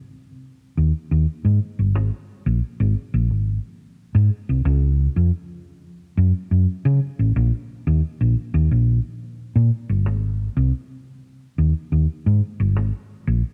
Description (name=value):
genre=funk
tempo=89 BPM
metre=4/4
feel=straight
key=unclear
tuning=A4 = 439 Hz
part: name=hollow-body short-scale fingered electric bass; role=solo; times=0.8-13.4 s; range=G1 to Db3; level=-20 LUFS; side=equal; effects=cassette tape
room=light reverb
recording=home recording on cassette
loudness=-21 LUFS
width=mono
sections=0.0-13.5 A section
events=none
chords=none